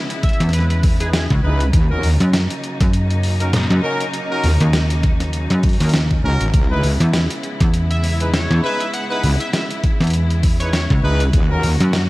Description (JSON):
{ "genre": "glitch hop", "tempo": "100 BPM", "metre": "4/4", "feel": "swing 57% on 16ths", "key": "C# dorian", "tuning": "A4 = 440 Hz", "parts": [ { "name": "rich studio string section", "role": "sustained chords", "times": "0.0-12.1 s", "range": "C#3 to F#4", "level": "-27 LUFS", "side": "equal", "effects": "vintage 12-bit sampler grit, sidechain pumping" }, { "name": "boom bap sampler-style drum kit", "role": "drums", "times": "0.1-12.1 s", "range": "hi-hat, snare drum", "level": "-24 LUFS", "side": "equal", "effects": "small room ambience" }, { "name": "sync lead", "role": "melody", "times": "0.2-1.2, 7.9-10.8 s", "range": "G#4 to F#5", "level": "-28 LUFS", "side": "equal", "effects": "chorus, digital delay" }, { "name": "electronic kick drum", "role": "drums", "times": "0.2-11.5 s", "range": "none", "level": "-17 LUFS", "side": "equal", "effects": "overdrive, small room ambience" }, { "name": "slap-like FM bass", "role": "bass", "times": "0.4-12.1 s", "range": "C#2 to F#2", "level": "-17 LUFS", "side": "equal", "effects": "tube saturation" }, { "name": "clear horn section", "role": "stabs", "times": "1.0-11.7 s", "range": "C#4 to B4", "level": "-24 LUFS", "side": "equal", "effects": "sidechain pumping, digital delay" }, { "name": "wobble bass", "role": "bass", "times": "1.4-11.8 s", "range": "G#1 to D#2", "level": "-16 LUFS", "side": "equal", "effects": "chorus, tube saturation" } ], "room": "light reverb, digital ambience", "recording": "bright 1980s-style digital production, vinyl crackle", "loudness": "-15 LUFS", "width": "side -19 dB against mid", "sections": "0.0-12.1 A section", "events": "none", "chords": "0.0 C#m7; 1.7 D#m7; 6.5 C#m7; 11.3 D#m7" }